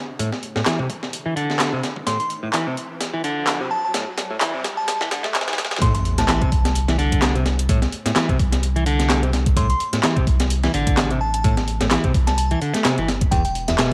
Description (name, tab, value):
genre	breakbeat, breaks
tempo	128 BPM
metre	4/4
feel	swing 56% on 16ths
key	A minor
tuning	A4 = 436 Hz
part	riser and sub drop	sound effects	2.0-7.7 s	none	-34 LUFS	equal	none
part	modern bright picked electric bass	riff	0.2-13.9 s	E2 to A3	-27 LUFS	equal	overdrive, low-pass filter, cassette tape, analog delay
part	breakbeat sampler-style drum kit	drums	0.2-13.9 s	hi-hat, kick drum, snare drum	-24 LUFS	equal	high-pass filter on hats, high-pass filter on kick, high-pass filter on snare
part	garage drum kit	drums	0.7-13.9 s	handclaps, hi-hat	-29 LUFS	equal	none
part	glassy synth bell	melody	2.1-6.7, 9.6-13.9 s	E5 to C6	-29 LUFS	equal	chorus, small speaker sound, cassette tape
part	saturated sub bass	bass	5.8-13.9 s	E1 to C2	-24 LUFS	equal	none
room	light reverb, digital ambience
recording	home recording on cassette, high-pass filter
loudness	-21 LUFS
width	mono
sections	0.0-5.8 A section; 5.8-13.9 B section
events	build-up 0.0-5.8; filter sweep on picked electric bass 0.0-5.8; riser 2.0-5.8; drum fill 2.1-5.8; drop 5.8-13.9; impact 5.8-7.7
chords	0.0 Amadd11; 5.8 Am; 13.3 Em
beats	| 0.19 0.66 1.13 1.60 | 2.07 2.54 3.01 3.48 | 3.94 4.41 4.88 5.35 | 5.82 6.29 6.76 7.22 | 7.69 8.16 8.63 9.10 | 9.57 10.04 10.51 10.97 | 11.44 11.91 12.38 12.85 | 13.32 13.79